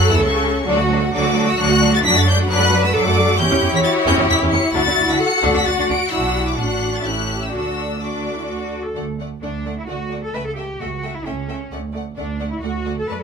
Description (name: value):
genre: quick classical-period movement for string orchestra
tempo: 131 BPM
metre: 3/4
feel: rubato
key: D major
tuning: A4 = 438 Hz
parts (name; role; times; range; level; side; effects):
- clear studio violin section; melody; 0.0-13.2 s; F#5 to D7; -21 LUFS; left 3 dB; none
- clear studio violin section; second line; 0.0-13.2 s; C#4 to F#5; -24 LUFS; left 3 dB; none
- rich studio viola section; accompaniment; 0.0-13.2 s; C#3 to G4; -22 LUFS; left 2 dB; none
- rich studio cello section; bass; 0.0-13.2 s; C#4 to B4; -24 LUFS; right 1 dB; none
- rich studio double bass section; bass; 0.0-13.2 s; A1 to F#2; -22 LUFS; right 3 dB; none
room: light reverb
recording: none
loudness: -16 LUFS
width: side -6 dB against mid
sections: 0.0-9.0 A section; 9.0-13.2 B section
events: none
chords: 0.0 A; 0.7 D; 2.0 D/F#; 3.4 C#dim/E; 4.7 D; 6.1 Bm; 6.6 D/A; 7.0 A7; 7.5 D; 10.3 A7/C#; 11.7 D